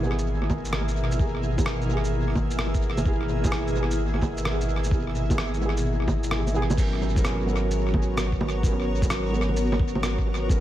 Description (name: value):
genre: future garage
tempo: 129 BPM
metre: 4/4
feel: swing 67% on 16ths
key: G# minor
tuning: A4 = 440 Hz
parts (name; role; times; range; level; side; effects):
- felt-muted upright piano; accompaniment; 0.0-10.6 s; E3 to A#4; -30 LUFS; right 2 dB; sidechain pumping, low-pass filter, dub echo
- granular cloud pad; sustained chords; 0.0-10.6 s; B2 to E5; -30 LUFS; left 1 dB; built-in reverb, sidechain pumping
- soft dub sub bass; bass; 0.0-10.6 s; G#1; -27 LUFS; equal; sidechain pumping
- drifting glass-harmonics texture; texture; 0.2-6.8 s; A#3 to A#4; -38 LUFS; left 2 dB; chorus, built-in reverb
- lo-fi sampler-style drum kit; drums; 0.2-10.6 s; bongos, crash cymbal, rim click, shaker; -30 LUFS; right 1 dB; studio reverb, tape echo
- electronic kick drum; drums; 0.5-10.6 s; none; -25 LUFS; equal; studio reverb
room: digital ambience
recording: echo-heavy mix, vinyl crackle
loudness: -22 LUFS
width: side -13 dB against mid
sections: 0.0-6.8 A section; 6.8-10.6 B section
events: kick drops out 6.3-6.8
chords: 0.0 E/G#; 6.8 G#m11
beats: 0.27 0.73 | 1.20 1.66 2.13 2.59 | 3.06 3.52 3.99 4.45 | 4.92 5.38 5.85 6.31 | 6.78 7.24 7.71 8.17 | 8.64 9.10 9.57 10.03 | 10.50